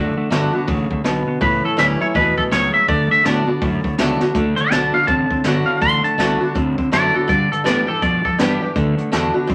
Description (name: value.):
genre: rockabilly.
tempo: 164 BPM.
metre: 4/4.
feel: swing 61% on 8ths.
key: D major, D mixolydian from 4.3 s.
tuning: A4 = 440 Hz.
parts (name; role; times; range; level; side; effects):
twangy electric guitar; melody; 0.0-8.7 s; F#4 to C6; -21 LUFS; equal; vibrato effect.
picked swing-style acoustic guitar; accompaniment; 0.0-9.5 s; G2 to G4; -24 LUFS; equal; none.
clean electric guitar; riff; 0.0-9.5 s; G2 to C4; -25 LUFS; equal; none.
fuzz fingered electric bass; bass; 0.0-9.5 s; F#1 to B2; -27 LUFS; equal; overdrive.
jazz brush drum kit; drums; 0.3-9.5 s; hi-hat, kick drum, snare drum; -26 LUFS; equal; none.
room: wet studio reverb, RT60 0.5 s.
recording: vinyl crackle.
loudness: -18 LUFS.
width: mono.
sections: 0.0-4.3 A section; 4.3-9.5 B section.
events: drum fill 4.2; clean electric guitar solo 4.3-9.5.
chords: 0.0 D; 1.4 A7; 2.9 D; 7.3 G; 8.8 D.